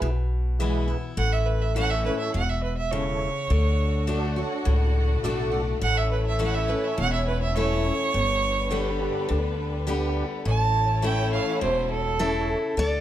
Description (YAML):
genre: honky-tonk and classic country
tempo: 103 BPM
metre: 4/4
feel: straight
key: unclear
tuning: A4 = 440 Hz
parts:
  - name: mellow tonewheel organ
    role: accompaniment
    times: 0.0-12.6 s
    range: D4 to D5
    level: -32 LUFS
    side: right 3 dB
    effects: slow rotary speaker, overdrive, chorus vibrato
  - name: picked steel-string acoustic guitar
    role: accompaniment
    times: 0.0-13.0 s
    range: E2 to G4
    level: -30 LUFS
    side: left 5 dB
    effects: none
  - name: upright bass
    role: bass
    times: 0.0-13.0 s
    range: E1 to D2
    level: -25 LUFS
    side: equal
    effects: none
  - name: rich fiddle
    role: second line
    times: 1.2-12.8 s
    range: A4 to A5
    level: -27 LUFS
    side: right 4 dB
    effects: none
  - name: rich studio violin section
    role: sustained chords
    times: 3.5-12.8 s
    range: G3 to F#5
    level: -34 LUFS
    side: left 1 dB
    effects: none
  - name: picked steel-string acoustic guitar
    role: melody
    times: 12.2-13.0 s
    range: E4 to D5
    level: -25 LUFS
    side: left 2 dB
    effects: none
room: light reverb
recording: none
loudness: -22 LUFS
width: side -12 dB against mid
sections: 0.0-12.8 A section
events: fiddle solo 0.0-12.8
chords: 0.0 E; 1.2 A; 3.5 D; 5.8 A; 8.1 G; 10.5 A